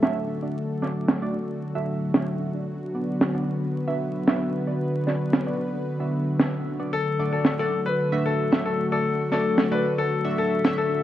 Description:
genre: italo disco.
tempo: 113 BPM.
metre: 4/4.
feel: straight.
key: unclear.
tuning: A4 = 440 Hz.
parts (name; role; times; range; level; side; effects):
warm analog pad; sustained chords; 0.0-11.0 s; D3 to B4; -26 LUFS; left 1 dB; chorus.
chorused polysynth; stabs; 0.0-11.0 s; A3 to E5; -30 LUFS; right 3 dB; tape echo.
snare drum; drums; 0.0-10.8 s; none; -23 LUFS; right 1 dB; low-pass filter on hats, low-pass filter on toms, low-pass filter on cymbals, low-pass filter on snare, low-pass filter on room.
clear baby grand piano; melody; 6.9-11.0 s; A4 to B4; -25 LUFS; left 4 dB; ping-pong delay.
room: moderate plate reverb, RT60 2.2 s.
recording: vinyl crackle, nothing above 10.6 kHz.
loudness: -22 LUFS.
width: side -12 dB against mid.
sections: 0.0-11.0 A section.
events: filter sweep on analog polysynth 0.0-11.0; filter sweep on analog synth pad 0.0-11.0.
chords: 0.0 D; 2.7 Bm; 6.9 D.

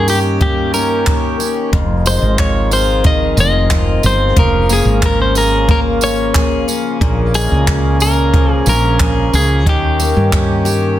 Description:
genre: acoustic pop.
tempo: 91 BPM.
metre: 4/4.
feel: straight.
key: F minor.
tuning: A4 = 440 Hz.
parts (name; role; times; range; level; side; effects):
clean electric guitar; melody; 0.0-11.0 s; G4 to Eb5; -17 LUFS; equal; none.
picked steel-string acoustic guitar; accompaniment; 0.0-11.0 s; F2 to Ab4; -19 LUFS; left 5 dB; none.
hand-pumped harmonium; sustained chords; 0.0-11.0 s; Db3 to Ab4; -22 LUFS; right 4 dB; none.
woody fretless electric bass; bass; 0.0-11.0 s; F1 to G2; -16 LUFS; equal; none.
jazz brush drum kit; drums; 0.1-10.8 s; handclaps, kick drum, tambourine; -16 LUFS; right 1 dB; none.
room: light reverb.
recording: dense, heavily limited modern master.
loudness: -11 LUFS.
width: side -13 dB against mid.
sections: 0.0-11.0 A section.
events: none.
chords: 0.0 Eb7; 1.7 Fm7; 4.4 Db6/F; 7.0 Bbm7; 9.7 Eb7.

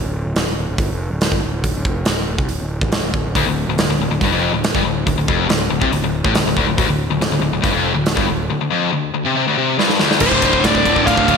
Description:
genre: heavy metal.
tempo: 140 BPM.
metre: 4/4.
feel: straight.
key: D minor.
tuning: A4 = 440 Hz.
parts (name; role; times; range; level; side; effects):
fuzz picked electric bass; bass; 0.0-11.4 s; D1 to C2; -22 LUFS; equal; overdrive.
big rock drum kit; drums; 0.4-11.4 s; crash cymbal, hi-hat, kick drum, ride cymbal, snare drum; -20 LUFS; right 1 dB; gated reverb.
sludgy distorted guitar; riff; 3.4-11.4 s; D2 to D3; -22 LUFS; right 12 dB; overdrive.
tight distorted guitar; riff; 3.4-11.4 s; D2 to D3; -18 LUFS; left 11 dB; distortion.
bluesy overdriven lead guitar; melody; 10.2-11.4 s; C5 to F5; -17 LUFS; left 1 dB; distortion.
fuzz guitar; riff; 10.2-11.4 s; D2 to D3; -21 LUFS; right 2 dB; distortion.
room: moderate lush hall reverb, RT60 1.6 s, studio reverb.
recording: bright 1980s-style digital production.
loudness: -15 LUFS.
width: side -6 dB against mid.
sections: 0.0-10.2 A section; 10.2-11.4 B section.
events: drum fill 9.8-10.2.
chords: 0.0 Dm.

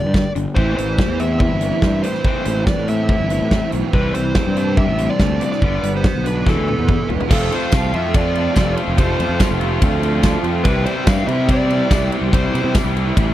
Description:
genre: indie rock.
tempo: 143 BPM.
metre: 4/4.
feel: straight.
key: unclear.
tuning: A4 = 435 Hz.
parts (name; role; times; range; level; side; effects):
fuzz lead guitar; melody; 0.0-12.7 s; A4 to F5; -24 LUFS; equal; distortion, slapback echo.
overdriven electric guitar; riff; 0.0-13.3 s; E2 to F4; -25 LUFS; left 8 dB; spring reverb.
fuzz fingered electric bass; bass; 0.0-13.3 s; E1 to C3; -20 LUFS; equal; overdrive.
big rock drum kit; drums; 0.1-13.3 s; crash cymbal, hi-hat, kick drum, ride cymbal, snare drum, toms; -19 LUFS; equal; none.
fuzz guitar; riff; 0.6-13.3 s; E3 to A4; -24 LUFS; right 8 dB; distortion, ensemble chorus, slapback echo.
mellow tonewheel organ; sustained chords; 7.3-13.3 s; G4 to C6; -32 LUFS; equal; none.
tambourine; percussion; 7.7-12.8 s; none; -39 LUFS; left 8 dB; none.
room: little or no reverb.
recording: dry, close 1970s-style studio recording.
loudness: -15 LUFS.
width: side -13 dB against mid.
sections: 0.0-7.3 A section; 7.3-13.3 B section.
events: drum fill 6.5-7.3.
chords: 0.0 G5; 0.6 Am; 3.9 Cadd9; 5.6 G; 6.5 Esus4; 7.3 F; 10.7 C.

